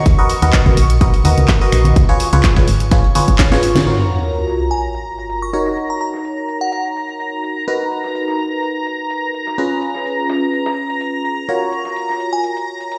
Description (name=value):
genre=piano house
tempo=126 BPM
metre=4/4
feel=swing 54% on 16ths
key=F# major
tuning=A4 = 441 Hz
part: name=analog string pad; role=sustained chords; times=0.0-13.0 s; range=A#5 to C#6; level=-27 LUFS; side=equal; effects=ensemble chorus, sidechain pumping
part: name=barking FM electric piano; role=riff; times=0.0-13.0 s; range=C#4 to D#5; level=-22 LUFS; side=equal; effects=phaser, vintage 12-bit sampler grit, sidechain pumping, digital delay
part: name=solid FM bass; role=bass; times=0.1-3.8 s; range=G#1 to D#2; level=-17 LUFS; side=equal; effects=sidechain pumping
part: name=dusty soul sampler-style drum kit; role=drums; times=0.1-13.0 s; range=hi-hat, snare drum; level=-36 LUFS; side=equal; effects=none
part: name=electronic kick drum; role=drums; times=0.1-3.5 s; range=none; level=-15 LUFS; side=equal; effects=none
part: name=house drum kit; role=drums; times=0.1-13.0 s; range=finger snaps, handclaps, hi-hat, shaker, snare drum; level=-23 LUFS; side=equal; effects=low-pass filter on snare, low-pass filter on hats, low-pass filter on perc, low-pass filter on room
part: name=tambourine and congas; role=percussion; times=0.1-3.8 s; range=none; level=-24 LUFS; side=equal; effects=none
part: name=sub drop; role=sound effects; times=3.9-5.8 s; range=none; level=-23 LUFS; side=equal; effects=none
part: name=glassy synth bell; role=melody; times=4.7-6.8, 12.3-12.5 s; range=F#5 to C#6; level=-27 LUFS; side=equal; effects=chorus, digital delay
room=light reverb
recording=played on a big sound system in a bare room, large studio reverb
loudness=-16 LUFS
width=mono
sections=0.0-3.9 A section; 3.9-13.0 B section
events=drum fill 3.4-3.9; band accent 3.7; impact 3.9-5.8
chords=0.1 Bmaj7; 2.0 C#7; 3.9 F#maj7; 5.5 D#m7; 7.7 Bmaj7/D#; 9.6 C#7; 11.5 F#maj7